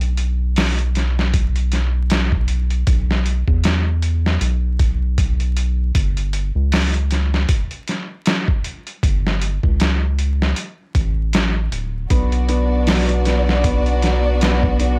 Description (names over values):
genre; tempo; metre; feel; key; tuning
trip hop; 78 BPM; 4/4; swing 57% on 16ths; B minor; A4 = 438 Hz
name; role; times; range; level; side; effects
round analog bass; bass; 0.0-15.0 s; D1 to E2; -21 LUFS; equal; tube saturation
trip hop sampler-style drum kit; drums; 0.0-15.0 s; hi-hat, kick drum, snare drum; -22 LUFS; equal; none
warm studio string section; sustained chords; 12.1-15.0 s; B3 to D5; -25 LUFS; equal; none
felt-muted upright piano; arpeggios; 12.1-15.0 s; F#3 to B3; -25 LUFS; equal; tape echo
room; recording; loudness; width
digital ambience; vinyl crackle; -19 LUFS; mono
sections
0.0-15.0 A section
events
none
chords
0.0 Bsus4; 6.0 Gsus2; 12.1 Bm